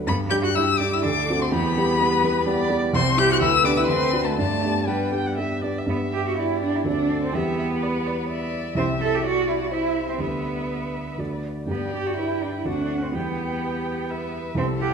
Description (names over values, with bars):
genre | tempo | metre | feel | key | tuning
quick classical-period movement for piano quartet | 125 BPM | 3/4 | rubato | G major | A4 = 440 Hz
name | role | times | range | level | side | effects
dark baby grand piano | accompaniment | 0.0-14.9 s | C2 to G4 | -25 LUFS | right 1 dB | none
warm violin | melody | 0.1-14.9 s | F#4 to G6 | -27 LUFS | left 7 dB | none
warm cello | second line | 0.1-14.9 s | G3 to A4 | -26 LUFS | right 3 dB | none
warm viola | accompaniment | 0.6-14.9 s | G4 to G5 | -31 LUFS | equal | none
room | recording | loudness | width
wet recital hall reverb, RT60 1.5 s | minimal, uncompressed stereo recording | -21 LUFS | side -6 dB against mid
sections
0.0-5.9 A section; 5.9-14.9 B section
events
none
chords
0.1 G5; 1.0 D7; 1.5 Em; 2.9 C; 3.4 G/D; 3.9 D7; 4.4 G; 6.9 D7; 7.3 Em; 8.8 C; 10.2 G/D; 11.2 D; 11.7 G; 12.7 D7; 13.1 Em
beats
| 0.07 0.56 1.04 | 1.53 2.01 2.48 | 2.95 3.42 3.89 | 4.38 4.87 5.38 | 5.88 6.37 6.86 | 7.34 7.81 8.29 | 8.77 9.25 9.72 | 10.21 10.70 11.19 | 11.69 12.18 12.67 | 13.14 13.63 14.10 | 14.57